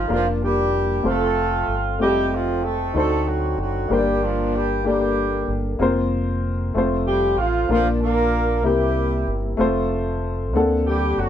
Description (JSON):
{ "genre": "slow gospel", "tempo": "63 BPM (dotted quarters)", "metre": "6/8", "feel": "straight", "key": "unclear", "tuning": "A4 = 440 Hz", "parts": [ { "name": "mellow horn section", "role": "melody", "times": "0.0-11.3 s", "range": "F3 to Bb4", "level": "-22 LUFS", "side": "right 1 dB", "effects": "none" }, { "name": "warm upright piano", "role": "accompaniment", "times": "0.0-11.3 s", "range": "G2 to F#5", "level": "-22 LUFS", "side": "left 2 dB", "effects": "none" }, { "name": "deep dub fingered electric bass", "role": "bass", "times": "0.0-11.3 s", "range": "F1 to D2", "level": "-25 LUFS", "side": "equal", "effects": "none" } ], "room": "moderate studio ambience, RT60 0.5 s", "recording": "band playing live in one room", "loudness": "-18 LUFS", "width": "side -10 dB against mid", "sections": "0.0-11.3 A section", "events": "none", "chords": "0.1 Bb/F; 1.0 F; 2.9 D7b9; 3.9 Gm; 5.8 Fsus4; 6.7 F; 7.7 Bb; 8.6 C7; 9.6 F; 10.5 D7b13" }